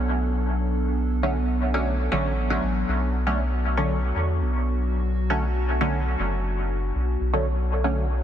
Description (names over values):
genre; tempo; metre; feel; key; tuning
dub techno; 118 BPM; 4/4; straight; B minor; A4 = 440 Hz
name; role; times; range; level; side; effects
warbly tape-like pad; sustained chords; 0.0-8.2 s; F#3 to A4; -30 LUFS; equal; chorus, built-in reverb, phaser
soft dub sub bass; bass; 0.0-8.2 s; F#1 to E2; -24 LUFS; equal; none
filtered dub chord stab; stabs; 1.2-8.0 s; D3 to C#4; -27 LUFS; right 1 dB; chorus, phaser, dub echo
room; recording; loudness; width
light reverb; dense, heavily limited modern master; -22 LUFS; side -10 dB against mid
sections
0.0-8.2 A section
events
none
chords
0.0 Bm7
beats
0.34 | 0.85 1.36 1.86 2.37 | 2.88 3.39 3.90 4.41 | 4.92 5.42 5.93 6.44 | 6.95 7.46 7.97